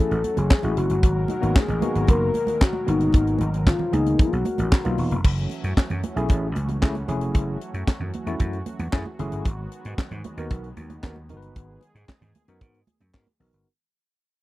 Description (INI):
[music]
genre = early-eighties boogie funk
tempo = 114 BPM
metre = 4/4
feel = straight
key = unclear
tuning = A4 = 440 Hz
[part]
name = soft octave-layered synth lead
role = melody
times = 0.0-5.0 s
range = D#4 to A#4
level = -25 LUFS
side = left 3 dB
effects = chorus
[part]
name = tine electric piano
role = accompaniment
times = 0.0-13.7 s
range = A3 to B4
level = -28 LUFS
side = left 2 dB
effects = medium stereo tremolo
[part]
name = warm analog pad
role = sustained chords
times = 0.0-13.6 s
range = B2 to A#4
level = -35 LUFS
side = right 2 dB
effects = chorus, tremolo
[part]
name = vintage slap bass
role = bass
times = 0.1-13.6 s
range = E1 to G#2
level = -26 LUFS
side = equal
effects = none
[part]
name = tight funk drum kit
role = drums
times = 0.1-13.7 s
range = crash cymbal, handclaps, hi-hat, kick drum, snare drum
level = -18 LUFS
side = equal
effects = none
[part]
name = congas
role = percussion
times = 0.2-13.5 s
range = none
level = -33 LUFS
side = right 4 dB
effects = none
[sound]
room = little or no reverb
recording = dry, close 1970s-style studio recording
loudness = -20 LUFS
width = side -17 dB against mid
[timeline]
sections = 0.0-5.2 A section; 5.2-13.7 B section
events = fade-out 5.2-13.7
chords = 0.0 F#m9; 1.0 G#m9; 5.2 F#m9; 9.5 G#m9